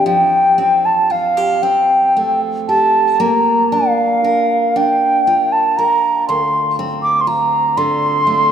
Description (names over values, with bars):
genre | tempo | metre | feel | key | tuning
celtic folk, Celtic slow air | 38-41 BPM (dotted quarters) | 6/8 | rubato | unclear | A4 = 440 Hz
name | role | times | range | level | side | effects
wooden flute | melody | 0.0-8.5 s | F5 to D6 | -13 LUFS | right 1 dB | none
picked steel-string acoustic guitar | accompaniment | 0.0-8.5 s | D2 to Bb4 | -20 LUFS | equal | none
room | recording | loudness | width
wet church reverb, RT60 3.2 s | minimal, uncompressed stereo recording | -12 LUFS | side -8 dB against mid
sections
0.0-8.5 A section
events
none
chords
0.1 Fadd9; 3.2 Bb; 6.3 Dm7